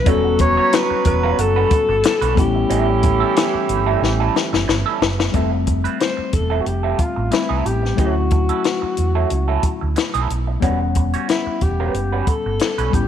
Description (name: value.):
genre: lush 1970s-style soul.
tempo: 91 BPM.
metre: 4/4.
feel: swing 54% on 16ths.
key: E dorian.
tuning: A4 = 439 Hz.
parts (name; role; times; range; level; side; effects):
breathy alto saxophone; melody; 0.0-13.1 s; E4 to C#5; -21 LUFS; left 2 dB; none.
mellow tine electric piano; accompaniment; 0.0-13.1 s; F#3 to F#5; -25 LUFS; left 10 dB; none.
electric guitar through a small old amp; riff; 0.1-13.0 s; F3 to C#5; -26 LUFS; right 12 dB; wah.
dark horn section; stabs; 0.1-5.0 s; E3 to F#4; -23 LUFS; right 12 dB; none.
fingered electric bass; bass; 0.1-13.1 s; E1 to E2; -21 LUFS; right 2 dB; none.
compact cocktail drum kit; drums; 0.1-13.1 s; hi-hat, kick drum, snare drum; -20 LUFS; left 2 dB; none.
room: light reverb, studio ambience.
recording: 1960s-style stereo with parts hard left and right.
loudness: -16 LUFS.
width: side -9 dB against mid.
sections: 0.0-5.3 A section; 5.3-13.1 B section.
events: drum fill 4.0-5.3.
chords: 0.1 Em69; 2.4 A7; 5.3 Fmaj7; 8.0 Dmaj9; 10.6 Em69.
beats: | 0.06 0.72 1.38 2.04 | 2.70 3.36 4.02 4.68 | 5.34 6.00 6.66 7.32 | 7.98 8.64 9.30 9.96 | 10.62 11.28 11.94 12.61.